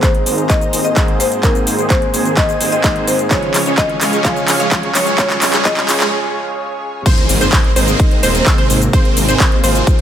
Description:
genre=EDM, festival progressive house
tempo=128 BPM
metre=4/4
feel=straight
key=Ab major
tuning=A4 = 440 Hz
part: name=marimba with medium hard mallets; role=melody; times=0.0-6.1 s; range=Bb4 to F5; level=-20 LUFS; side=left 2 dB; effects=digital delay
part: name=warm grand piano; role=accompaniment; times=0.0-7.1 s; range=Ab2 to Ab4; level=-23 LUFS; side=equal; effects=sidechain pumping, digital delay
part: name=lush unison pad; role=sustained chords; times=0.0-10.0 s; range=C3 to Db6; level=-23 LUFS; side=equal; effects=chorus, phaser, sidechain pumping
part: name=supersaw chords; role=riff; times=0.0-10.0 s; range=Eb3 to Db5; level=-19 LUFS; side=right 1 dB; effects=wide subtle chorus, sidechain pumping, low-pass filter, digital delay
part: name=big-room dance drum kit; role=drums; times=0.0-10.0 s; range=crash cymbal, handclaps, hi-hat, shaker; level=-18 LUFS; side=equal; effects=none
part: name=electronic kick drum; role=drums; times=0.0-10.0 s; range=none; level=-14 LUFS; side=equal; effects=none
part: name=riser and impact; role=sound effects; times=3.1-8.9 s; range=none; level=-28 LUFS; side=equal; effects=none
part: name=detuned saw bass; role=bass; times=0.3-9.8 s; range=Eb1 to Db2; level=-20 LUFS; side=equal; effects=sidechain pumping, high-pass filter
part: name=wide unison pluck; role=arpeggios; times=7.1-10.0 s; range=C5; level=-21 LUFS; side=right 1 dB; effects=sidechain pumping, digital delay
room=moderate lush hall reverb, RT60 1.9 s, digital ambience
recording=high-pass filter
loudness=-11 LUFS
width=side -10 dB against mid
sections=0.0-7.1 A section; 7.1-10.0 B section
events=build-up 0.0-7.1; drum fill 0.0-6.1; filter sweep on supersaw synth 0.0-7.1; filter sweep 0.0-7.1; break 6.1-7.1; drop 7.1-10.0; impact 7.1-8.9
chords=0.0 Abadd9; 3.3 Db; 7.1 Abadd9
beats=0.03 0.50 0.96 | 1.43 1.90 2.37 2.84 | 3.31 3.78 4.25 4.71 | 5.18 5.65 6.12 6.59 | 7.06 7.53 8.00 8.46 | 8.93 9.40 9.87

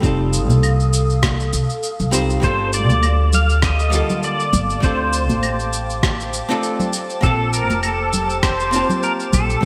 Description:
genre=sunset chillout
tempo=100 BPM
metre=4/4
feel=swing 56% on 16ths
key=unclear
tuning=A4 = 440 Hz
part: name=archtop guitar, miked and amplified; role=accompaniment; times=0.0-9.7 s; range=D3 to A5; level=-26 LUFS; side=equal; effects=digital delay
part: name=airy breathy pad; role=sustained chords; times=0.0-9.7 s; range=A4 to Eb6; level=-30 LUFS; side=equal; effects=chorus
part: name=upright bass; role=bass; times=0.0-9.7 s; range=F1 to D2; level=-21 LUFS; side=equal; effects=none
part: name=electronic kick drum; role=drums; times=0.0-9.7 s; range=none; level=-21 LUFS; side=equal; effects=overdrive
part: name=electronic shaker, claves and rim click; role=drums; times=0.0-9.7 s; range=none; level=-27 LUFS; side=equal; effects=gated reverb
part: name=congas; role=percussion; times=0.5-9.5 s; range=none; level=-28 LUFS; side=equal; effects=none
part: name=pedal steel guitar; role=melody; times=2.4-9.7 s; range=A4 to F5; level=-23 LUFS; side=equal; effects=ensemble chorus, delay
part: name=drifting glass-harmonics texture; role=texture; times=3.2-9.7 s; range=G4 to A5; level=-34 LUFS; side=equal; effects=chorus, built-in reverb
room=moderate lush hall reverb, RT60 2.0 s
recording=bright 1980s-style digital production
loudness=-18 LUFS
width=mono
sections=0.0-9.7 A section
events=none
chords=0.0 F7; 2.4 Gm9; 4.8 Dm7; 6.9 Bbmaj9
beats=| 0.03 0.63 1.23 1.83 | 2.43 3.03 3.63 4.23 | 4.83 5.43 6.03 6.63 | 7.23 7.83 8.43 9.03 | 9.63

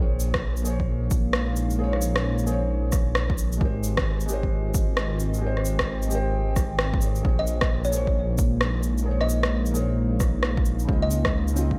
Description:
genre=future garage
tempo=132 BPM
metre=4/4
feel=swing 63% on 16ths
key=Bb dorian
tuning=A4 = 445 Hz
part: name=felt-muted upright piano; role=accompaniment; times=0.0-11.8 s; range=Db3 to Eb5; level=-35 LUFS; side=equal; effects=lush chorus, sidechain pumping, digital delay
part: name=dark analog pad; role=sustained chords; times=0.0-11.8 s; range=Ab3 to G5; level=-34 LUFS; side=equal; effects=chorus, sidechain pumping
part: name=dark detuned saw bass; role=bass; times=0.0-11.8 s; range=Ab1 to Db2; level=-28 LUFS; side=equal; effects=sidechain pumping
part: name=electronic shaker and rim click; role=drums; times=0.2-11.7 s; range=none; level=-31 LUFS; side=equal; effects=gated reverb
part: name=electronic kick drum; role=drums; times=0.3-11.8 s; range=none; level=-27 LUFS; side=equal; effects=none
part: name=buzzing kalimba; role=melody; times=7.4-11.3 s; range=Db5 to Eb5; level=-33 LUFS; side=equal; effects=digital delay
room=light reverb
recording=bright 1980s-style digital production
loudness=-24 LUFS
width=mono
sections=0.0-11.8 A section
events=none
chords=0.0 Bbm9; 3.6 Abmaj9; 7.2 Bbm9; 10.9 Dbmaj9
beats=0.43 0.89 1.34 | 1.79 2.25 2.70 3.16 | 3.61 4.07 4.52 4.98 | 5.43 5.88 6.34 6.79 | 7.25 7.70 8.16 8.61 | 9.07 9.52 9.98 10.43 | 10.88 11.34

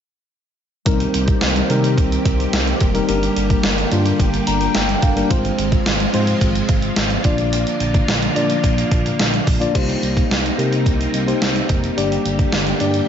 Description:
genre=1980s-style pop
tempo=108 BPM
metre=4/4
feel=straight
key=C minor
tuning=A4 = 440 Hz
part: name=mellow tine electric piano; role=accompaniment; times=0.9-13.1 s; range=G3 to Bb5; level=-20 LUFS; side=left 2 dB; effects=auto-pan, slapback echo
part: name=string machine, violins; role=sustained chords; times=0.9-13.1 s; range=C3 to G4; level=-24 LUFS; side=right 2 dB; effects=ensemble chorus
part: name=smooth synth bass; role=bass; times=0.9-13.0 s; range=F1 to C3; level=-23 LUFS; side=equal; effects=none
part: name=clean 12-bit digital drum machine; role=drums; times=0.9-13.1 s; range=crash cymbal, hi-hat, kick drum, snare drum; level=-19 LUFS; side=right 1 dB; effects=none
room=moderate concert hall reverb, RT60 2.1 s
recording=big arena sound, nothing above 7.8 kHz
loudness=-15 LUFS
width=side -8 dB against mid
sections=0.9-9.8 A section; 9.8-13.1 B section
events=tine electric piano fill 4.2-5.3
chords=0.9 Cm7; 3.1 Gm; 5.3 Fm/Ab; 7.3 Bb; 9.8 Cm7; 12.0 Gm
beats=| 0.86 1.42 1.97 2.53 | 3.08 3.64 4.20 4.75 | 5.31 5.86 6.42 6.97 | 7.53 8.08 8.64 9.20 | 9.75 10.31 10.86 11.42 | 11.97 12.53

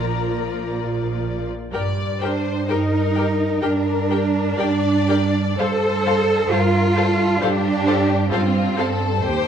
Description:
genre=classical, slow romantic movement for string orchestra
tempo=57-68 BPM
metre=4/4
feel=rubato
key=G minor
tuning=A4 = 440 Hz
part: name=rich symphonic violin section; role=melody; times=0.0-9.5 s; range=F5 to Bb5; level=-32 LUFS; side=left 8 dB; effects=none
part: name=rich symphonic violin section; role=second line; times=0.0-9.5 s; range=F4 to D5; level=-25 LUFS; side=left 6 dB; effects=none
part: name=rich symphonic viola section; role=accompaniment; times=0.0-9.5 s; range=F3 to C5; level=-28 LUFS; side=left 1 dB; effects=none
part: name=rich symphonic cello section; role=bass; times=0.0-9.2 s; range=Bb2 to A4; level=-21 LUFS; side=right 2 dB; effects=none
part: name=rich symphonic double bass section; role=bass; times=0.0-9.5 s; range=Bb1 to G2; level=-22 LUFS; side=right 3 dB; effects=none
room=moderate concert hall reverb, RT60 1.8 s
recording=dark, warm production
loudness=-18 LUFS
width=side -8 dB against mid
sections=0.0-1.7 A section; 1.7-9.5 B section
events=none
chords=0.0 Bb; 1.7 Gm; 5.6 F/G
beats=0.77 | 1.74 2.69 3.62 4.58 | 5.59 6.51 7.41 8.31 | 9.24

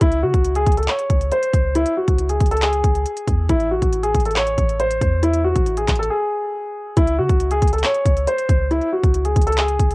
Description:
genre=hip hop, trap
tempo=138 BPM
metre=4/4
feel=half-time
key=C# harmonic minor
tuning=A4 = 439 Hz
part: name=dark concert grand piano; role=melody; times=0.0-9.9 s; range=E4 to C#5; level=-19 LUFS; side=equal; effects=cassette tape
part: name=clean 808-style bass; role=bass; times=0.0-9.9 s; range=A1 to C#3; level=-20 LUFS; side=equal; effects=none
part: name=trap drum kit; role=drums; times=0.0-9.9 s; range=handclaps, hi-hat, kick drum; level=-20 LUFS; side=equal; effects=cassette tape
room=little or no reverb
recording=home recording on cassette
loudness=-16 LUFS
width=side -23 dB against mid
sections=0.0-9.9 A section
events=break 6.1-7.0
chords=0.0 C#5; 3.5 A5; 7.0 C#5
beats=| 0.01 0.45 0.88 1.32 | 1.75 2.19 2.62 3.06 | 3.49 3.93 4.36 4.80 | 5.23 5.67 6.10 6.54 | 6.97 7.41 7.84 8.27 | 8.71 9.14 9.58

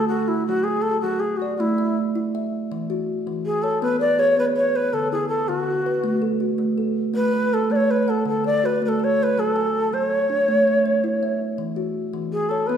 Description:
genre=southern african traditional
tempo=108 BPM (dotted quarters)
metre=12/8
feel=straight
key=A major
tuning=A4 = 440 Hz
part: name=reedy low Native American-style wooden flute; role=melody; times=0.0-12.8 s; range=E4 to D5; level=-20 LUFS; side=equal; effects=none
part: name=kalimba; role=arpeggios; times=0.0-12.8 s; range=D3 to G#5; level=-24 LUFS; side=right 1 dB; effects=none
room=wet recital hall reverb, RT60 1.4 s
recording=recorded in a church or concert hall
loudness=-19 LUFS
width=side -8 dB against mid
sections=0.0-12.8 A section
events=none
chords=0.5 F#m; 1.6 A5; 2.7 E; 4.9 D; 7.1 Asus2; 8.3 D; 9.4 F#m; 10.5 A; 11.6 N.C.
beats=| 0.48 1.04 1.59 2.15 | 2.71 3.26 3.82 4.37 | 4.93 5.48 6.04 6.59 | 7.15 7.70 8.26 8.81 | 9.36 9.92 10.47 11.02 | 11.58 12.13 12.68

